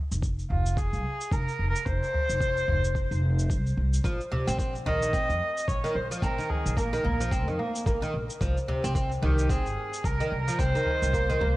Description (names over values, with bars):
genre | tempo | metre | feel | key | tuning
organic downtempo | 110 BPM | 4/4 | swing 58% on 16ths | F minor | A4 = 440 Hz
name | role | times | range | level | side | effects
upright bass | bass | 0.1-11.6 s | F1 to F2 | -28 LUFS | equal | sidechain pumping
shaker | drums | 0.1-11.4 s | none | -42 LUFS | equal | none
electronic kick drum | drums | 0.2-11.3 s | none | -29 LUFS | equal | none
clear kamancheh | melody | 0.5-11.6 s | F4 to Eb5 | -30 LUFS | equal | ping-pong delay
udu | percussion | 0.5-11.5 s | none | -31 LUFS | equal | none
oud | arpeggios | 4.0-11.6 s | C3 to C4 | -30 LUFS | right 1 dB | ping-pong delay
room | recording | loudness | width
light reverb, small room ambience | worn, warbling old tape, cassette tape, warbly pitch drift | -25 LUFS | side -18 dB against mid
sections
0.0-11.6 A section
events
none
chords
0.0 F5; 4.0 Bbsus2; 8.4 Cm